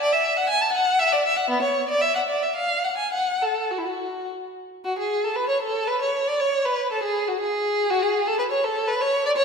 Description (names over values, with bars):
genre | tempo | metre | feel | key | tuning
classical, baroque-style suite movement for unaccompanied violin | 102-123 BPM | 3/4 | rubato | F# minor | A4 = 440 Hz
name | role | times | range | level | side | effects
rich violin | solo | 0.0-9.4 s | B3 to A5 | -21 LUFS | equal | none
room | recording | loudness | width
wet concert hall reverb, RT60 1.8 s | minimal, uncompressed stereo recording | -21 LUFS | side -5 dB against mid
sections
0.0-4.8 A section; 4.8-9.4 B section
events
none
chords
none